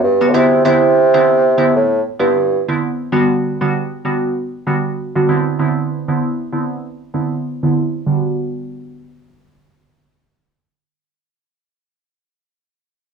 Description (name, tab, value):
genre	afrobeats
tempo	97 BPM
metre	4/4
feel	swing 58% on 16ths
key	G major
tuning	A4 = 440 Hz
part	mellow bassoon	bass	0.0-2.6 s	G2 to C3	-12 LUFS	right 1 dB	none
part	glassy wavetable pluck	accompaniment	0.2-11.5 s	D3 to F#4	-17 LUFS	right 2 dB	chorus, low-pass filter
room	light reverb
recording	home recording on cassette, small room ambience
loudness	-14 LUFS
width	side -6 dB against mid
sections	0.0-8.1 A section; 8.1-10.5 B section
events	filter sweep on synth pluck 0.0-8.1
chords	0.3 Cmaj9; 3.1 Gmaj7; 5.3 Cmaj9; 8.1 Gmaj7